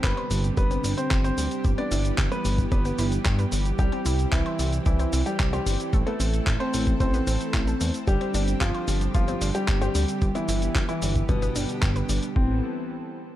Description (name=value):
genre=italo disco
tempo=112 BPM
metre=4/4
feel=straight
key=A minor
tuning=A4 = 439 Hz
part: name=warm concert grand piano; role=melody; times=0.0-12.6 s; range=B2 to D5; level=-30 LUFS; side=left 1 dB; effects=ping-pong delay
part: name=lush unison pad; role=sustained chords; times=0.0-12.6 s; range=C3 to A4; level=-31 LUFS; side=right 1 dB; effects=chorus
part: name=analog pluck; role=arpeggios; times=0.0-12.6 s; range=G3 to C5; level=-36 LUFS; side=left 3 dB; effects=chorus, tape echo
part: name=chorused synth bass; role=bass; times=0.0-12.6 s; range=G1 to G2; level=-26 LUFS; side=equal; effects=none
part: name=dusty soul sampler-style drum kit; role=drums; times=0.0-12.3 s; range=cabasa, handclaps, hi-hat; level=-32 LUFS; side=equal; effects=small room ambience
part: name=electronic kick drum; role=drums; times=0.0-12.5 s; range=none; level=-24 LUFS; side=equal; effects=small room ambience
room=digital ambience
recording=dark, warm production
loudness=-22 LUFS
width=side -13 dB against mid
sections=0.0-12.4 A section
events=none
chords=0.0 Gsus4; 1.6 Em/G; 3.8 C; 5.9 Amadd9; 8.1 Gsus4; 10.2 Em/G; 11.3 G; 12.4 Amadd9